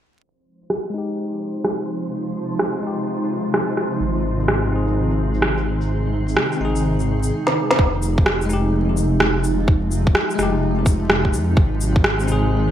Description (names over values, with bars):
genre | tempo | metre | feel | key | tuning
future garage | 127 BPM | 4/4 | swing 65% on 16ths | F minor | A4 = 441 Hz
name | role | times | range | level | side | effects
granular cloud pad | sustained chords | 1.4-12.7 s | C3 to Ab4 | -25 LUFS | right 1 dB | built-in reverb, sidechain pumping
wind-like tuned noise texture | texture | 1.2-7.3 s | C4 to C5 | -34 LUFS | equal | built-in reverb
electronic shaker, rim click and snare drum | drums | 0.6-12.4 s | none | -21 LUFS | right 1 dB | overdrive, gated reverb
bell-like tine electric piano | accompaniment | 0.9-12.7 s | Ab3 to Ab4 | -26 LUFS | left 3 dB | sidechain pumping, low-pass filter, ping-pong delay
swelling detuned saw bass | bass | 4.0-12.7 s | F1 to F2 | -21 LUFS | equal | sidechain pumping
electronic kick drum | drums | 7.8-12.0 s | none | -16 LUFS | equal | overdrive
room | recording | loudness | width
light reverb, digital ambience | bright 1980s-style digital production, vinyl crackle, low-pass filter | -17 LUFS | side -10 dB against mid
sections
0.2-7.8 A section; 7.8-12.7 B section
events
filter sweep on tine electric piano 0.2-7.8; filter sweep 0.2-7.8; drum fill 7.4-7.8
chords
0.2 Fm7; 4.0 Ab; 7.8 Fm7; 11.6 Ab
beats
| 0.23 0.70 1.18 1.65 | 2.12 2.59 3.07 3.54 | 4.01 4.48 4.96 5.43 | 5.90 6.37 6.84 7.32 | 7.79 8.26 8.73 9.21 | 9.68 10.15 10.62 11.10 | 11.57 12.04 12.52